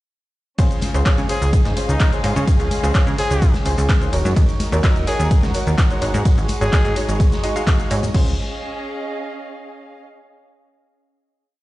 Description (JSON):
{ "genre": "piano house", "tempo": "127 BPM", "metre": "4/4", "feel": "straight", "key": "Db major", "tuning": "A4 = 440 Hz", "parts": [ { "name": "clear upright piano", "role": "riff", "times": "0.6-8.3 s", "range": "Db3 to F5", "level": "-25 LUFS", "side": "equal", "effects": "sidechain pumping, tape echo" }, { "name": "plucky analog bass", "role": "bass", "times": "0.6-8.4 s", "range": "Eb1 to Db3", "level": "-20 LUFS", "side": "equal", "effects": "sidechain pumping" }, { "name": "big rock drum kit", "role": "drums", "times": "0.6-8.1 s", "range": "hi-hat, snare drum", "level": "-37 LUFS", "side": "right 2 dB", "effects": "sidechain pumping on hats, high-pass filter on hats, high-pass filter on snare, high-pass filter on room" }, { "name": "electronic kick drum", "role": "drums", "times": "0.6-8.2 s", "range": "none", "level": "-18 LUFS", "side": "equal", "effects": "none" }, { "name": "punchy analog drum machine", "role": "drums", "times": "0.6-8.2 s", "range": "crash cymbal, handclaps, hi-hat, ride cymbal, shaker", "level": "-28 LUFS", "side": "left 1 dB", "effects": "none" }, { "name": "tambourine and congas", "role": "percussion", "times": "0.6-8.1 s", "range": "none", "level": "-30 LUFS", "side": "left 3 dB", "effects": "none" }, { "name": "muted chamber string section", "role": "texture", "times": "0.6-10.0 s", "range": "Db4 to Db6", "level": "-30 LUFS", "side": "equal", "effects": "sidechain pumping" }, { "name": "clear trumpet", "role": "melody", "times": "1.3-7.0 s", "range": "Eb4 to Ab4", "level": "-27 LUFS", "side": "equal", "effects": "tape echo" } ], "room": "small room ambience", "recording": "played on a big sound system in a bare room, stone room reverb, nothing above 10.4 kHz", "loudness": "-16 LUFS", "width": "side -17 dB against mid", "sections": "0.6-8.1 drop; 8.1-10.0 final chord", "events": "drop 0.6-8.1", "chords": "0.6 Dbmaj7; 4.1 Ebm7; 6.0 Ab7sus4; 8.1 Db" }